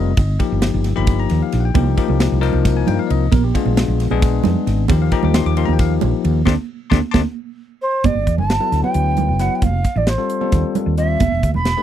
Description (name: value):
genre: electric jazz fusion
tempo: 267 BPM (eighths)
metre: 7/8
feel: straight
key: G major from 8.0 s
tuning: A4 = 444 Hz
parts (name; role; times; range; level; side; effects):
- bell-like tine electric piano; accompaniment; 0.0-11.8 s; F3 to D6; -21 LUFS; left 13 dB; none
- woody fretless electric bass; bass; 0.0-11.7 s; E1 to G2; -18 LUFS; right 1 dB; lush chorus
- crisp fusion drum kit; drums; 0.2-11.8 s; hi-hat, kick drum, ride cymbal, snare drum; -18 LUFS; right 1 dB; none
- congas; percussion; 1.7-11.6 s; none; -23 LUFS; right 13 dB; none
- mellow silver concert flute; melody; 7.8-11.8 s; C5 to B5; -20 LUFS; right 3 dB; none
room: little or no reverb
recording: dry, close 1970s-style studio recording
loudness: -15 LUFS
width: side -10 dB against mid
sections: 0.0-8.0 A section; 8.0-11.8 B section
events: band accent 6.5-8.0; drum fill 7.4-8.0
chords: 0.2 G7alt; 1.8 Cm7; 3.3 Bb7b9; 4.9 Ebadd9; 6.5 D5; 8.0 Gmaj7; 9.6 F9; 11.2 E7(no3)